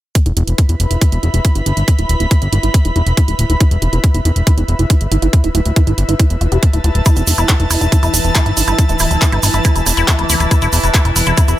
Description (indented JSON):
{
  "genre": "psychedelic trance",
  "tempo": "139 BPM",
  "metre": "4/4",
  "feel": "straight",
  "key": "unclear",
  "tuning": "A4 = 441 Hz",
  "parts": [
    { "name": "drum and bass drum kit", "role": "drums", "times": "0.2-11.6 s", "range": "handclaps, hi-hat", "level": "-20 LUFS", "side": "right 3 dB", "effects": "overdrive" },
    { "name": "electronic kick drum", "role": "drums", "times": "0.2-11.5 s", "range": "none", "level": "-11 LUFS", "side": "equal", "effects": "overdrive" },
    { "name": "airy breathy pad", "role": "texture", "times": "0.2-11.6 s", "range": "E4 to B5", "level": "-22 LUFS", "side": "equal", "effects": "chorus, sidechain pumping" },
    { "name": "woody wave-folded pluck", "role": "riff", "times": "0.3-11.5 s", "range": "E4 to G4", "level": "-21 LUFS", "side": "moving between left 5 dB and right 8 dB", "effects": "chorus, auto-pan, cassette tape, sidechain pumping, ping-pong delay" },
    { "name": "fat analog bass", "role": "bass", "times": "0.3-11.5 s", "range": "D1 to G1", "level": "-15 LUFS", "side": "equal", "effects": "none" },
    { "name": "overtone-sweeping drone", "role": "sustained chords", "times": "7.5-11.6 s", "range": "E3 to E4", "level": "-23 LUFS", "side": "equal", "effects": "chorus, built-in reverb, phaser, sidechain pumping" },
    { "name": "tube shaker", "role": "percussion", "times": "7.1-11.6 s", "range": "none", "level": "-21 LUFS", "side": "right 4 dB", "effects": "none" },
    { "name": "vowel-sweep wobble bass", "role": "second line", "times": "8.8-9.6 s", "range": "B3 to E4", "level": "-35 LUFS", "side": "right 1 dB", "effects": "none" }
  ],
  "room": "digital ambience",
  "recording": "none",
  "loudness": "-11 LUFS",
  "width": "side -14 dB against mid",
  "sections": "0.2-11.6 A section",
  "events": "filter sweep on synth arpeggio sound 0.2-11.6",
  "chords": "0.2 E5"
}